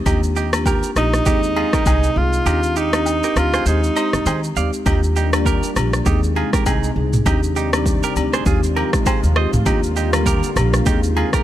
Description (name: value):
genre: afrobeats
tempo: 100 BPM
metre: 4/4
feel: swing 58% on 16ths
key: Eb major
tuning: A4 = 441 Hz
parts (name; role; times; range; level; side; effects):
- upright bass; bass; 0.0-11.2 s; Bb1 to Eb3; -20 LUFS; equal; none
- marimba with soft mallets; accompaniment; 0.1-11.4 s; Ab3 to Ab4; -23 LUFS; left 2 dB; none
- direct-recorded clean electric guitar; riff; 0.1-11.4 s; Eb4 to F5; -25 LUFS; right 8 dB; digital delay
- afro-pop drum kit; drums; 0.1-11.4 s; kick drum, rim click, shaker, toms; -20 LUFS; equal; none
- agogo bells and woodblock; percussion; 0.1-11.3 s; none; -29 LUFS; left 7 dB; none
- breathy alto saxophone; melody; 1.0-4.5 s; Eb4 to F4; -20 LUFS; right 2 dB; none
- lush unison pad; sustained chords; 4.9-11.4 s; C3 to D5; -27 LUFS; equal; chorus
room: small room ambience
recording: none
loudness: -15 LUFS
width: side -12 dB against mid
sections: 0.0-4.9 A section; 4.9-11.4 B section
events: kick muted 2.5-4.9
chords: 0.1 Ebmaj7; 1.3 Ab/Eb; 2.5 Cmadd9/Eb; 3.7 Fm7/Eb (rootless); 4.9 Ebmaj7; 6.1 Ab/Eb; 7.3 Cmadd9/Eb; 8.5 Fm7/Eb; 9.7 Ebmaj7; 10.9 Ab/Eb